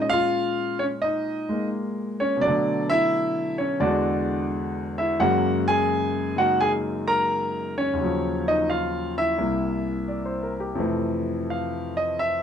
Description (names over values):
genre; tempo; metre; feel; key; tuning
solo jazz; 86 BPM; 4/4; swing 68% on 8ths; unclear; A4 = 440 Hz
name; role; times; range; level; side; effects
clear concert grand piano; solo; 0.0-12.4 s; C2 to Bb5; -22 LUFS; equal; none
room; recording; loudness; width
moderate studio reverb, RT60 0.5 s; none; -22 LUFS; side -8 dB against mid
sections
0.0-10.8 A section; 10.8-12.4 B section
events
grand piano solo 10.8-12.4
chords
0.0 Bbm7; 2.4 Cbm7; 3.8 E9; 5.2 Gbadd9; 8.0 Ebm9; 9.4 C7; 10.8 Fmaj7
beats
0.32 1.02 1.71 | 2.41 3.10 3.80 4.50 | 5.19 5.89 6.59 7.28 | 7.98 8.68 9.38 10.08 | 10.77 11.47 12.17